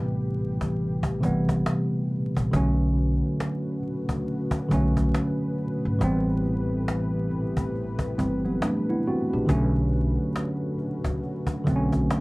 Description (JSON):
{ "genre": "lo-fi hip hop", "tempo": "69 BPM", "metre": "4/4", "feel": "swing 62% on 16ths", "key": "unclear", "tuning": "A4 = 440 Hz", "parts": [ { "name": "tine electric piano", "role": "accompaniment", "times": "0.0-12.2 s", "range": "C3 to G4", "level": "-25 LUFS", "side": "right 1 dB", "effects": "cassette tape, low-pass filter" }, { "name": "dark analog pad", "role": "sustained chords", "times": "0.0-12.2 s", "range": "C3 to B4", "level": "-34 LUFS", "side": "left 2 dB", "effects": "chorus, low-pass filter" }, { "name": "upright bass", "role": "bass", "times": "0.0-12.1 s", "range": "G1 to C#2", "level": "-28 LUFS", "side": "equal", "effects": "none" }, { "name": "cajon", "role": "drums", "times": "0.6-12.2 s", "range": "none", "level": "-30 LUFS", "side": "equal", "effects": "none" } ], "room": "light reverb", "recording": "dark, warm production, vinyl crackle", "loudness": "-23 LUFS", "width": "side -23 dB against mid", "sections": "0.0-12.2 A section", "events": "break 0.0-2.5", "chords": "0.0 Am9; 2.5 Bm9; 6.0 Am9; 9.5 Bm9" }